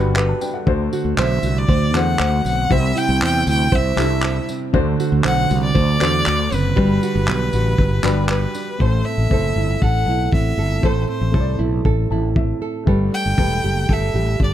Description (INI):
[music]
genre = acoustic pop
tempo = 118 BPM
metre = 4/4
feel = straight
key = unclear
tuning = A4 = 440 Hz
[part]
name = nylon-string guitar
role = accompaniment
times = 0.0-14.5 s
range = A2 to C5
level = -22 LUFS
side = right 5 dB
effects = none
[part]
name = warm baby grand piano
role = accompaniment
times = 0.0-14.5 s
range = G3 to A5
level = -27 LUFS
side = left 6 dB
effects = none
[part]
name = fretless electric bass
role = bass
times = 0.0-14.5 s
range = E1 to E2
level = -19 LUFS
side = equal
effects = none
[part]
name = cloth-damped thuddy drum kit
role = drums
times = 0.2-14.5 s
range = handclaps, kick drum, tambourine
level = -21 LUFS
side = equal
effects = none
[part]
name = rich violin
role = melody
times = 1.2-14.5 s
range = B4 to G5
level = -23 LUFS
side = left 1 dB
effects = none
[sound]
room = little or no reverb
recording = none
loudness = -16 LUFS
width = side -11 dB against mid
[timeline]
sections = 0.0-8.8 A section; 8.8-14.5 B section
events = grand piano fill 11.9-12.9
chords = 0.0 Gmaj7; 0.7 D7; 2.7 C; 4.7 D7; 6.8 Gmaj7; 8.8 Am; 12.9 Gadd9